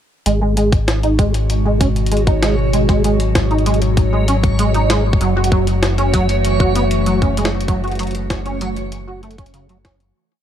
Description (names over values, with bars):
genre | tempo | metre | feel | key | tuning
IDM | 97 BPM | 4/4 | straight | G# phrygian | A4 = 441 Hz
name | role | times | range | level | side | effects
warbly tape-like pad | sustained chords | 1.1-10.1 s | B2 to F#4 | -22 LUFS | left 1 dB | chorus, built-in reverb, phaser, vintage 12-bit sampler grit, shimmer reverb
deep acid bass | arpeggios | 0.3-10.0 s | C#3 to F#4 | -20 LUFS | right 1 dB | ensemble chorus, cassette tape, ping-pong delay, shimmer reverb
round analog bass | bass | 0.3-10.1 s | F#1 to G#1 | -18 LUFS | equal | none
jungle sampler-style drum kit | drums | 0.3-10.1 s | hi-hat, snare drum | -24 LUFS | equal | studio ambience, ping-pong delay
backwards swelling texture | texture | 1.4-10.2 s | C#5 | -27 LUFS | right 3 dB | built-in reverb, shimmer reverb
electronic kick drum | drums | 0.7-10.0 s | none | -16 LUFS | equal | studio ambience
room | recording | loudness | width
little or no reverb | dark, warm production | -14 LUFS | side -10 dB against mid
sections
0.3-10.2 groove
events
fade-out 6.9-10.2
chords
0.3 G#m7; 5.2 F#m7